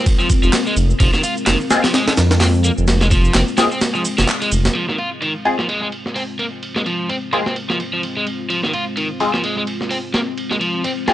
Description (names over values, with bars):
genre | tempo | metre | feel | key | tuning
breakbeat, breaks | 128 BPM | 4/4 | swing 58% on 16ths | F minor | A4 = 440 Hz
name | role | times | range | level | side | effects
deep dark ambient pad | sustained chords | 0.0-11.1 s | Ab3 to C5 | -26 LUFS | left 2 dB | chorus, built-in reverb, sidechain pumping
overdriven electric guitar | riff | 0.0-11.1 s | Eb3 to F4 | -21 LUFS | equal | low-pass filter, tape echo
breakbeat sampler-style drum kit | drums | 0.1-11.1 s | hi-hat, kick drum, ride cymbal, snare drum | -20 LUFS | equal | low-pass filter on snare, low-pass filter on cymbals, low-pass filter on kick, low-pass filter on hats
electronic shaker and handclaps | drums | 0.1-4.7 s | none | -24 LUFS | right 1 dB | none
dark detuned saw bass | bass | 0.4-4.7 s | F1 to F2 | -16 LUFS | equal | tube saturation
band-passed chord stab | stabs | 1.7-11.1 s | Ab3 to Ab4 | -20 LUFS | left 2 dB | phaser, ensemble chorus, tape echo
room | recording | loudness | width
little or no reverb | dry, gritty hardware recording, nothing above 10.6 kHz | -15 LUFS | side -13 dB against mid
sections
0.0-4.8 A section; 4.8-11.1 B section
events
break 3.8-4.8; band accent 4.3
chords
0.0 Fm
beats
0.06 0.53 | 1.00 1.47 1.94 2.41 | 2.88 3.35 3.81 4.28 | 4.75 5.22 5.69 6.16 | 6.63 7.09 7.56 8.03 | 8.50 8.97 9.44 9.91 | 10.38 10.85